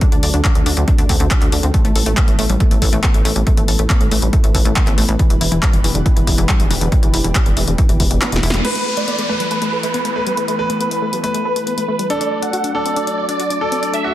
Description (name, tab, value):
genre	uplifting trance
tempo	139 BPM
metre	4/4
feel	straight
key	unclear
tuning	A4 = 440 Hz
part	lush unison pad	sustained chords	0.0-14.1 s	D3 to D5	-26 LUFS	equal	chorus, sidechain pumping
part	wide unison pluck	arpeggios	0.0-14.1 s	B2 to D5	-23 LUFS	left 2 dB	sidechain pumping, tape echo
part	electronic kick drum	drums	0.0-8.1 s	none	-15 LUFS	equal	none
part	punchy analog drum machine	drums	0.0-14.0 s	crash cymbal, handclaps, hi-hat, snare drum	-22 LUFS	left 1 dB	overdrive, sidechain pumping on hats, sidechain pumping on cymbals
part	plucky analog bass	bass	0.1-8.6 s	E1 to D2	-18 LUFS	equal	sidechain pumping
part	supersaw chords	melody	8.6-14.1 s	B4 to F#5	-21 LUFS	right 2 dB	phaser, sidechain pumping, low-pass filter, tape echo
part	bright grand piano	second line	8.6-14.1 s	F#4 to B4	-23 LUFS	equal	tape echo
part	downlifter	sound effects	8.6-12.1 s	none	-26 LUFS	equal	none
room	light reverb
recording	dense, heavily limited modern master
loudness	-14 LUFS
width	side -14 dB against mid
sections	0.0-8.6 A section; 8.6-14.1 B section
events	filter sweep on synth pluck 0.0-8.6, 8.6-14.1; filter sweep on analog synth pad 0.0-8.6; kick drops out 8.2-8.6; drum fill 8.2-8.6; band accent 8.5; filter sweep on supersaw synth 8.6-14.1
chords	0.0 D; 1.7 Asus2; 5.2 Em7; 8.6 Asus2; 12.1 D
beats	| 0.01 0.45 0.88 1.31 | 1.74 2.17 2.60 3.04 | 3.47 3.90 4.33 4.76 | 5.19 5.62 6.06 6.49 | 6.92 7.35 7.78 8.21 | 8.65 9.08 9.51 9.94 | 10.37 10.80 11.24 11.67 | 12.10 12.53 12.96 13.39 | 13.83